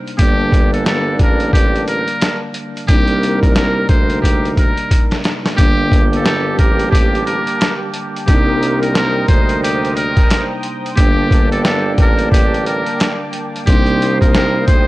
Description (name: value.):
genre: hip hop, boom-bap hip-hop.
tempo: 89 BPM.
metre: 4/4.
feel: swing 60% on 16ths.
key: G minor.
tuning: A4 = 440 Hz.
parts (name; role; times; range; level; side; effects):
mellow tine electric piano; accompaniment; 0.0-14.9 s; C3 to Eb4; -21 LUFS; equal; medium stereo tremolo, high-pass filter, low-pass filter.
boom bap sampler-style drum kit; drums; 0.1-14.9 s; hi-hat, kick drum, snare drum; -14 LUFS; equal; none.
trumpet with metal mute; melody; 0.2-14.9 s; G4 to C5; -20 LUFS; equal; high-pass filter, low-pass filter, analog delay.
mellow horn section; stabs; 0.2-14.9 s; D3 to C5; -24 LUFS; right 2 dB; high-pass filter, low-pass filter, analog delay.
warm tuba; bass; 0.2-14.9 s; G1 to D2; -20 LUFS; equal; transformer saturation.
warm analog pad; sustained chords; 5.6-14.9 s; Bb3 to Eb6; -26 LUFS; equal; chorus, high-pass filter, low-pass filter.
room: small room ambience.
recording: dry, gritty hardware recording, cassette tape.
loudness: -12 LUFS.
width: side -18 dB against mid.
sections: 0.0-5.6 A section; 5.6-14.9 B section.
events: drum fill 4.2-5.6.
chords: 0.2 Gmadd9; 2.9 Cm7; 5.6 Gmadd9; 8.3 Cm7; 11.0 Gmadd9; 13.7 Cm7.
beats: | 0.19 0.87 1.54 2.21 | 2.89 3.56 4.24 4.91 | 5.58 6.26 6.93 7.61 | 8.28 8.96 9.63 10.30 | 10.98 11.65 12.33 13.00 | 13.68 14.35.